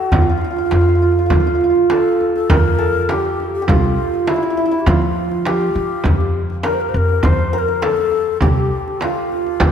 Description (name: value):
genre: Persian modal ensemble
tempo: 101 BPM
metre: 4/4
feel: straight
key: F dastgah mahur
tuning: A4 = 439 Hz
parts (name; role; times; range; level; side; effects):
- santur; melody; 0.0-9.7 s; E4 to C5; -18 LUFS; right 2 dB; none
- breathy low ney; second line; 0.0-9.7 s; D4 to C5; -22 LUFS; left 6 dB; none
- upright bass; bass; 0.1-9.7 s; C2 to F3; -19 LUFS; equal; none
- frame drum; percussion; 0.1-9.7 s; none; -23 LUFS; right 3 dB; none
- tombak; percussion; 0.1-9.7 s; none; -21 LUFS; equal; none
room: moderate concert hall reverb, RT60 2.4 s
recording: none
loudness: -14 LUFS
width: side -8 dB against mid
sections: 0.0-2.5 A section; 2.5-9.7 B section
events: none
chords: none